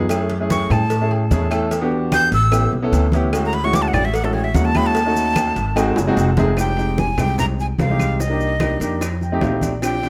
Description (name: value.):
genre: Afro-Cuban jazz.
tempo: 148 BPM.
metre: 4/4.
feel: straight.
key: F dorian from 6.6 s.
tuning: A4 = 438 Hz.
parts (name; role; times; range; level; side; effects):
warm grand piano; accompaniment; 0.0-10.1 s; G#3 to A5; -24 LUFS; equal; none.
upright bass; bass; 0.0-10.1 s; E#1 to A2; -23 LUFS; equal; none.
agogo bells and timbales; percussion; 0.1-10.1 s; none; -32 LUFS; equal; none.
claves; percussion; 0.1-10.0 s; none; -37 LUFS; equal; none.
congas; percussion; 0.1-10.1 s; none; -27 LUFS; equal; none.
cowbell and bongos; percussion; 0.1-10.1 s; none; -32 LUFS; equal; none.
maracas; percussion; 0.1-10.1 s; none; -40 LUFS; equal; none.
breathy bright jazz flute; melody; 0.5-10.1 s; A4 to G6; -25 LUFS; equal; tape echo.
room: light reverb.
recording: close, detailed microphones.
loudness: -18 LUFS.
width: mono.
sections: 0.0-6.6 A section; 6.6-10.1 B section.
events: flute solo 0.0-6.6; grand piano fill 5.4-6.6, 9.0-9.8; drum fill 6.0-6.6.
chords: 0.1 F#m7; 1.7 Em7; 2.5 A7; 3.3 Dmaj9#11; 5.0 D#m7b5; 5.8 G#7; 6.6 Fm9; 8.2 Cm7; 9.0 F9.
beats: | 0.10 0.51 0.91 1.32 | 1.72 2.12 2.53 2.93 | 3.34 3.74 4.15 4.55 | 4.96 5.36 5.76 6.17 | 6.58 6.98 7.39 7.79 | 8.20 8.60 9.01 9.42 | 9.82.